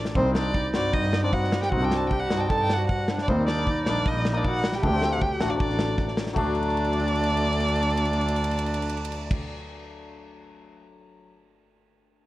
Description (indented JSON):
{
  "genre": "klezmer",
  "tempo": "156 BPM",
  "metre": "4/4",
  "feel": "straight",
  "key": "D phrygian dominant",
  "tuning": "A4 = 439 Hz",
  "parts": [
    { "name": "hammered dulcimer", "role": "accompaniment", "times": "0.0-11.3 s", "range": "F#3 to F#4", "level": "-31 LUFS", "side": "left 4 dB", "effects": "none" },
    { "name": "clear clarinet", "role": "second line", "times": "0.1-9.3 s", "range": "C4 to A4", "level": "-31 LUFS", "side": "right 3 dB", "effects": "none" },
    { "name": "clear double bass", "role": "bass", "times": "0.1-9.3 s", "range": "A1 to G2", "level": "-27 LUFS", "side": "equal", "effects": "none" },
    { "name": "modern studio drum kit", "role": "drums", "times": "0.1-10.9 s", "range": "crash cymbal, kick drum, ride cymbal, snare drum", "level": "-30 LUFS", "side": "equal", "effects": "none" },
    { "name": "warm violin", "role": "melody", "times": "0.2-9.3 s", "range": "C5 to A5", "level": "-28 LUFS", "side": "right 1 dB", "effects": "analog delay" }
  ],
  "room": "light reverb, small room reverb",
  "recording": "cassette tape",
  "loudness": "-22 LUFS",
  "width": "side -16 dB against mid",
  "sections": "0.0-6.4 A section; 6.4-9.4 B section",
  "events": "speeding up 0.0-9.4; drum fill 0.0, 6.6-9.3",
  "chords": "0.2 Cm; 3.3 Eb; 4.8 D"
}